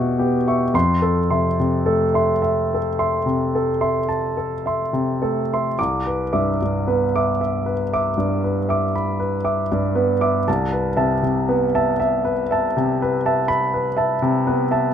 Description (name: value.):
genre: classical, impressionist solo piano.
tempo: 34-42 BPM (dotted quarters).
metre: 9/8.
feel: rubato.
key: unclear.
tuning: A4 = 440 Hz.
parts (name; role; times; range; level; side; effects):
clear concert grand piano; solo; 0.0-14.9 s; C2 to D6; -18 LUFS; equal; none.
room: light reverb.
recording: close, detailed microphones.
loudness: -18 LUFS.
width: side -8 dB against mid.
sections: 0.0-14.9 A section.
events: none.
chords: 0.0 Em6; 0.7 Fmaj7; 5.8 Cmaj9; 10.5 Cmaj7.